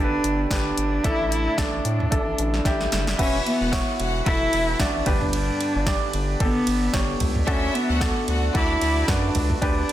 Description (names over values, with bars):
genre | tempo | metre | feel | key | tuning
piano-driven pop | 112 BPM | 4/4 | swing 56% on 16ths | D major | A4 = 440 Hz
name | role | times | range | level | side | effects
dark cello | melody | 0.0-9.9 s | B3 to E4 | -26 LUFS | equal | none
bright upright piano | accompaniment | 0.0-9.9 s | G2 to D5 | -27 LUFS | equal | none
percussive tonewheel organ | sustained chords | 0.0-9.9 s | D3 to G4 | -36 LUFS | left 1 dB | none
round analog bass | bass | 0.0-9.8 s | E1 to A2 | -26 LUFS | equal | none
deep house drum kit | drums | 0.2-9.9 s | crash cymbal, hi-hat, kick drum, ride cymbal, snare drum, toms | -26 LUFS | equal | none
clear studio violin section | second line | 3.2-9.3 s | D4 to F#5 | -30 LUFS | left 2 dB | none
room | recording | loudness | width
moderate large studio reverb, RT60 1.2 s | dense, heavily limited modern master | -20 LUFS | side -12 dB against mid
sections
0.0-3.2 A section; 3.2-9.9 B section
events
drum fill 2.7-3.2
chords
0.0 G; 1.0 Asus4; 3.2 Esus2; 5.1 G; 7.5 D